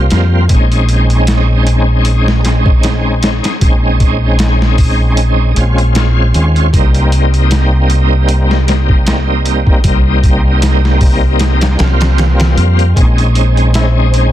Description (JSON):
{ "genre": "trip hop", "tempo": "77 BPM", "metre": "4/4", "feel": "swing 55% on 16ths", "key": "Bb dorian", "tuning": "A4 = 441 Hz", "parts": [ { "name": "bright tonewheel organ", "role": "accompaniment", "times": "0.0-14.3 s", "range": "G3 to F4", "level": "-15 LUFS", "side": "equal", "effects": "overdrive, chorus vibrato, slow rotary speaker, tremolo, vintage 12-bit sampler grit, tape echo" }, { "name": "deep dub fingered electric bass", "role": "bass", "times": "0.0-14.3 s", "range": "Bb1 to F2", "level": "-11 LUFS", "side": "equal", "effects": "tube saturation" }, { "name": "boom bap sampler-style drum kit", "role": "drums", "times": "0.1-14.3 s", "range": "hi-hat, kick drum, snare drum", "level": "-14 LUFS", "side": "equal", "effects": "soft clipping on snare" }, { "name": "flickering grainy texture", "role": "texture", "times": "13.4-14.3 s", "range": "C5", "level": "-23 LUFS", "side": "left 1 dB", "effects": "built-in reverb" }, { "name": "tabla", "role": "percussion", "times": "13.8-13.9 s", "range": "none", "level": "-27 LUFS", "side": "left 2 dB", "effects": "none" } ], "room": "digital ambience", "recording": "dense, heavily limited modern master", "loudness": "-8 LUFS", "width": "side -13 dB against mid", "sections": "0.0-14.3 A section", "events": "none", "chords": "0.0 C7(no3); 0.5 Bbm11; 6.7 Cm7; 13.0 Bbm11" }